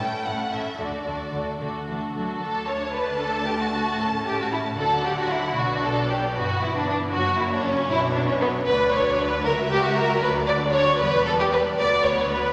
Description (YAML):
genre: quick classical-period movement for string orchestra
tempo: 76 BPM (dotted quarters)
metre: 6/8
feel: straight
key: D major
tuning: A4 = 438 Hz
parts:
  - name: warm symphonic violin section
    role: melody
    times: 0.0-12.5 s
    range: B4 to A5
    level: -32 LUFS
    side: equal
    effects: none
  - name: warm symphonic violin section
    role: second line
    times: 0.0-12.5 s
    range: B3 to D5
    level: -26 LUFS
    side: equal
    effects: none
  - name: warm symphonic viola section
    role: accompaniment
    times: 0.0-12.5 s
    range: E3 to F#4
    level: -33 LUFS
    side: equal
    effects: none
  - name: dark symphonic double bass section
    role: bass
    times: 0.0-12.5 s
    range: E1 to D2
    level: -38 LUFS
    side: equal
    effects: none
  - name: rich symphonic cello section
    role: bass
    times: 0.0-12.5 s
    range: C#2 to F#3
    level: -34 LUFS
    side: equal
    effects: none
room: wet concert hall reverb, RT60 1.8 s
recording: none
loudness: -23 LUFS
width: mono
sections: 0.0-2.4 A section; 2.4-12.5 A section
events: none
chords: 0.0 A; 0.8 D; 2.4 D5; 4.0 A; 4.8 D; 5.6 Bm; 7.1 F#; 7.9 Bm; 8.7 D; 9.5 F#5/C#; 10.2 Dmaj7; 11.0 Em; 11.8 Bm/D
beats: | 0.79 1.60 | 2.41 3.20 | 3.99 4.78 | 5.57 6.35 | 7.13 7.91 | 8.68 9.46 | 10.24 11.02 | 11.80